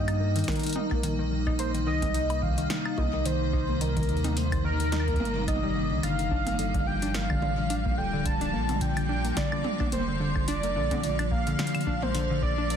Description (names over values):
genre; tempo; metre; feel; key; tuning
IDM; 108 BPM; 4/4; swing 56% on 16ths; unclear; A4 = 440 Hz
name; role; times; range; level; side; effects
warm velvety synth lead; melody; 0.0-12.8 s; Bb4 to A5; -32 LUFS; right 1 dB; chorus, ping-pong delay, shimmer reverb
icy glass pad; sustained chords; 0.0-12.8 s; C3 to F4; -32 LUFS; equal; chorus, built-in reverb, shimmer reverb
warbly dusty pluck; arpeggios; 0.0-12.8 s; D3 to Eb4; -32 LUFS; left 2 dB; chorus, digital delay, shimmer reverb
warm sub bass; bass; 0.0-12.8 s; D1 to G2; -31 LUFS; equal; none
electro analog drum machine; drums; 0.1-12.8 s; hi-hat, snare drum, toms, woodblock; -35 LUFS; equal; none
electronic kick drum; drums; 0.5-12.5 s; none; -32 LUFS; equal; none
room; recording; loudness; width
moderate digital room reverb, RT60 1.1 s; dense, heavily limited modern master; -25 LUFS; side -8 dB against mid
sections
0.0-12.8 A section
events
none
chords
0.0 Eb; 1.6 Cm7; 6.0 Gm7; 10.5 Bbmaj7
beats
0.48 1.03 | 1.59 2.15 2.70 3.26 | 3.81 4.37 4.92 5.48 | 6.03 6.59 7.14 7.70 | 8.26 8.81 9.37 9.92 | 10.48 11.03 11.59 12.14 | 12.70